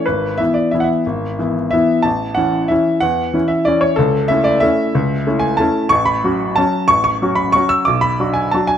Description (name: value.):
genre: classical, piano waltz.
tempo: 185 BPM.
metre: 3/4.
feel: uneven beats, rubato.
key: A major.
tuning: A4 = 441 Hz.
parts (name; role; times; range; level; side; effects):
clear upright piano; solo; 0.0-8.8 s; G#1 to E6; -14 LUFS; equal; none.
room: moderate recital hall reverb, RT60 1.6 s.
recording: close, detailed microphones.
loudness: -14 LUFS.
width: side -9 dB against mid.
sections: 0.0-8.8 A section.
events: none.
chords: 0.1 E/G#; 2.1 A; 4.0 A/C#; 5.9 F#m/A; 7.9 Bm.